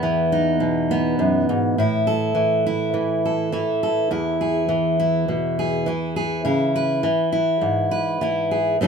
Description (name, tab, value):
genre	folk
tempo	103 BPM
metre	4/4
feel	straight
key	E major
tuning	A4 = 438 Hz
part	fingerpicked steel-string acoustic guitar	solo	0.0-8.9 s	E2 to B4	-18 LUFS	equal	none
room	wet studio ambience, RT60 0.5 s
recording	minimal, uncompressed stereo recording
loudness	-19 LUFS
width	side -6 dB against mid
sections	0.0-1.8 A section; 1.8-8.9 B section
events	none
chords	0.0 Emaj7; 1.8 A5; 4.1 E; 6.5 C#m7